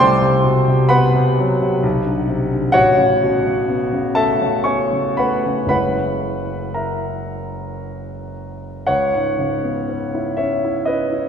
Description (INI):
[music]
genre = classical, impressionist solo piano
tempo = 54-71 BPM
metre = 3/4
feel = rubato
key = C# minor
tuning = A4 = 440 Hz
[part]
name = warm concert grand piano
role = solo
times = 0.0-11.3 s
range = F#1 to C#6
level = -16 LUFS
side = equal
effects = none
[sound]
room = wet church reverb, RT60 2.7 s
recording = recorded in a church or concert hall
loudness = -15 LUFS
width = side -7 dB against mid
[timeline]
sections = 0.0-8.9 A section; 8.9-11.3 B section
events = none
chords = 0.0 C5; 1.8 Bm; 2.7 A69; 5.7 F#9; 8.9 C#m7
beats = | 0.03 0.92 1.84 | 2.74 3.68 4.64 | 5.71 6.75 7.82 | 8.89 9.89 10.88